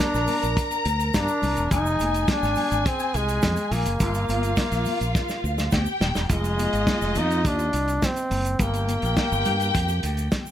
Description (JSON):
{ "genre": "disco", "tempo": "105 BPM", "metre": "4/4", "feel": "straight", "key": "F dorian", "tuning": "A4 = 439 Hz", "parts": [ { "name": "bright trombone", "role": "melody", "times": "0.0-10.3 s", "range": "Ab3 to Eb4", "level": "-26 LUFS", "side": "equal", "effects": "none" }, { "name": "dark symphonic string section", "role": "second line", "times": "0.0-10.5 s", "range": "F4 to Bb5", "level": "-28 LUFS", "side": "left 2 dB", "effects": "none" }, { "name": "fingered electric bass", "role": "bass", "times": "0.1-10.3 s", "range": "Eb1 to G2", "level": "-26 LUFS", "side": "equal", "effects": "none" }, { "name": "warm soul drum kit", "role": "drums", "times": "0.1-10.5 s", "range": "hi-hat, kick drum, snare drum", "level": "-26 LUFS", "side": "equal", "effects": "none" }, { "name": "congas", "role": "percussion", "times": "0.1-10.5 s", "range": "none", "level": "-36 LUFS", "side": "left 4 dB", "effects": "none" }, { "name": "tube shaker", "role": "percussion", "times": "0.1-10.5 s", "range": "none", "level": "-41 LUFS", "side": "right 6 dB", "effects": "none" } ], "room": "moderate small room reverb, RT60 0.6 s", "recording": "none", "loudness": "-21 LUFS", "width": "side -11 dB against mid", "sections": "0.0-6.3 A section; 6.3-10.5 B section", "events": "drum fill 5.2-6.3", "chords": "0.0 Gm; 1.7 Fm7; 4.0 Gm7; 6.3 Fm7; 8.6 Gm7" }